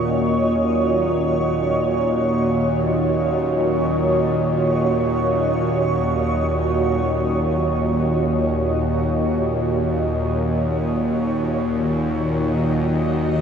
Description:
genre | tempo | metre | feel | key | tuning
ambient | free time | none | none | Eb minor | A4 = 442 Hz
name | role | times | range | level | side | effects
granular cloud pad | sustained chords | 0.0-13.4 s | Eb3 to Eb5 | -22 LUFS | right 1 dB | built-in reverb
bowed-like drone | drone | 0.0-13.4 s | Eb2 to Bb2 | -20 LUFS | equal | built-in reverb
room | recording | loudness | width
wet huge ambient reverb, RT60 8.2 s | nothing above 10.3 kHz | -18 LUFS | side -7 dB against mid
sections
0.0-13.4 A section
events
filter sweep on synth drone 0.0-13.4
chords
0.0 Ebm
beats
free time

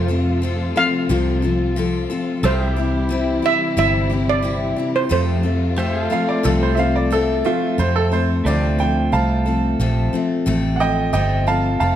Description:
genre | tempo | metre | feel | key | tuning
honky-tonk and classic country | 90 BPM | 4/4 | straight | F major | A4 = 440 Hz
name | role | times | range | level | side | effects
steel pan | melody | 0.0-7.1 s | C5 to F5 | -21 LUFS | right 4 dB | none
picked steel-string acoustic guitar | accompaniment | 0.0-12.0 s | F2 to A4 | -21 LUFS | left 4 dB | none
pedal steel guitar | sustained chords | 0.0-12.0 s | A3 to F5 | -28 LUFS | right 2 dB | none
warm studio string section | sustained chords | 0.0-7.8 s | C3 to F4 | -29 LUFS | right 1 dB | none
vintage muted fingered electric bass | bass | 0.0-12.0 s | F1 to F2 | -20 LUFS | right 1 dB | none
bright upright piano | second line | 6.1-12.0 s | A3 to A5 | -21 LUFS | right 4 dB | none
room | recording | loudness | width
moderate recital hall reverb, RT60 1.7 s | dark, warm production | -16 LUFS | side -10 dB against mid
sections
0.0-7.8 A section; 7.8-12.0 B section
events
upright piano solo 7.8-12.0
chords
0.0 F; 2.4 C; 5.1 F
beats
0.43 1.10 1.77 | 2.44 3.10 3.77 4.44 | 5.11 5.78 6.45 7.12 | 7.79 8.46 9.13 9.80 | 10.47 11.14 11.80

